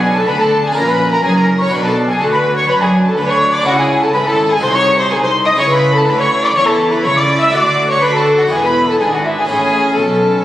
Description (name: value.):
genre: classical, baroque-style concerto movement with solo episodes.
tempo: 124 BPM.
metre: 4/4.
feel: straight.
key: unclear.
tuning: A4 = 440 Hz.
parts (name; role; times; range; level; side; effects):
mellow baroque flute; melody; 0.0-10.4 s; E5 to E6; -19 LUFS; equal; none.
warm chamber violin section; melody; 0.0-10.4 s; E5 to E6; -19 LUFS; left 1 dB; none.
warm chamber violin section; second line; 0.0-10.4 s; E4 to E5; -15 LUFS; left 1 dB; none.
dark chamber viola section; accompaniment; 0.0-10.4 s; C#4 to F#4; -22 LUFS; right 1 dB; none.
harpsichord; accompaniment; 0.0-10.4 s; B#1 to G#4; -23 LUFS; equal; none.
dark chamber cello section; bass; 0.0-10.4 s; B#1 to D4; -21 LUFS; right 1 dB; none.
rich chamber double bass section; bass; 0.0-10.4 s; E1 to D3; -21 LUFS; right 1 dB; none.
room: wet concert hall reverb, RT60 1.9 s.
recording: recorded on a phone in the room, studio reverb, compression.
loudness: -11 LUFS.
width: side -13 dB against mid.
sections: 0.0-10.4 A section.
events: none.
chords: 0.0 Bm; 0.8 F#7/A#; 1.7 Bm; 3.7 C#m; 4.6 G#7/B#; 5.6 C#m; 7.5 D; 8.5 E7; 9.5 A.